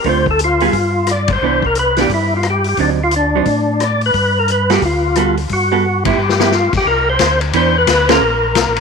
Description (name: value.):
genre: soul jazz organ trio.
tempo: 176 BPM.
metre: 4/4.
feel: swing 63% on 8ths.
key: G major.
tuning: A4 = 439 Hz.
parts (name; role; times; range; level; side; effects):
percussive tonewheel organ; melody; 0.0-8.8 s; D4 to D5; -15 LUFS; left 1 dB; slow rotary speaker, overdrive, chorus vibrato, tape echo.
mellow tonewheel organ; bass; 0.0-8.8 s; Bb1 to A2; -19 LUFS; left 1 dB; chorus vibrato, slow rotary speaker.
vintage drum kit; drums; 0.0-8.8 s; crash cymbal, hi-hat, kick drum, ride cymbal, rim click, snare drum; -20 LUFS; left 7 dB; none.
vintage hollow-body jazz guitar; accompaniment; 0.1-8.2 s; D3 to C5; -19 LUFS; right 13 dB; none.
room: light reverb, small room ambience.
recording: 1960s-style stereo with parts hard left and right.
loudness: -12 LUFS.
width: side -5 dB against mid.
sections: 0.0-6.9 A section; 6.9-8.8 B section.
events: band accent 1.2, 6.0, 8.1; drum fill 5.8-6.5.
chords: 0.1 Dm7; 0.7 G7sus4; 1.4 Cmaj9; 2.8 D7b9; 4.1 Gmaj9; 6.2 G6; 6.9 Cmaj9; 8.2 Bbsus2.